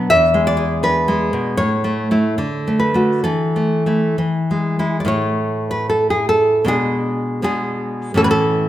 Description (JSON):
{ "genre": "romantic piece for solo classical guitar", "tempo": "63-83 BPM", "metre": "2/4", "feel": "rubato", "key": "A major", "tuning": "A4 = 436 Hz", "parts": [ { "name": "nylon-string guitar", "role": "solo", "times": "0.0-8.7 s", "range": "E2 to E5", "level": "-15 LUFS", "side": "equal", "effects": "none" } ], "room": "wet recital hall reverb, RT60 1.5 s", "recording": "minimal, uncompressed stereo recording", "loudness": "-15 LUFS", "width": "side -13 dB against mid", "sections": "0.0-5.1 A section; 5.1-8.7 A section", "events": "none", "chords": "0.1 E7; 1.6 A; 2.4 D; 3.3 Esus4; 4.2 E; 5.1 A5; 6.7 G#dim/B", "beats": "| 0.09 0.82 | 1.59 2.39 | 3.26 4.20 | 5.11 5.91 | 6.70 7.46 | 8.19" }